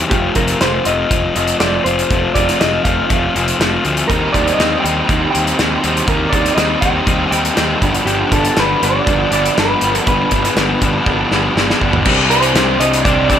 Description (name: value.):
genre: indie rock.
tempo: 121 BPM.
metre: 4/4.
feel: straight.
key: C dorian.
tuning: A4 = 440 Hz.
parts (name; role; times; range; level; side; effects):
crunchy overdriven guitar; riff; 0.0-13.4 s; G2 to G4; -17 LUFS; left 4 dB; none.
fuzz picked electric bass; bass; 0.0-13.4 s; F1 to Eb2; -20 LUFS; right 1 dB; overdrive.
electric guitar through a small old amp; melody; 0.1-13.4 s; G4 to G5; -19 LUFS; right 1 dB; digital delay.
loose indie drum kit; drums; 0.1-13.4 s; crash cymbal, hi-hat, kick drum, snare drum, toms; -18 LUFS; equal; none.
fuzz guitar; riff; 4.1-13.4 s; G2 to G4; -22 LUFS; right 9 dB; distortion, ensemble chorus.
overdriven combo organ; sustained chords; 12.1-13.4 s; C5 to D6; -29 LUFS; right 1 dB; none.
room: light reverb.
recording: none.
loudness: -12 LUFS.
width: side -9 dB against mid.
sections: 0.0-12.1 A section; 12.1-13.4 B section.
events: drum fill 11.1-12.1.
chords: 0.1 F; 4.1 Cm/Eb; 7.8 G7; 12.1 Csus2.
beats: | 0.11 0.61 1.11 1.60 | 2.10 2.60 3.10 3.60 | 4.09 4.59 5.09 5.58 | 6.08 6.58 7.08 7.58 | 8.07 8.57 9.07 9.57 | 10.06 10.56 11.06 11.56 | 12.05 12.55 13.04.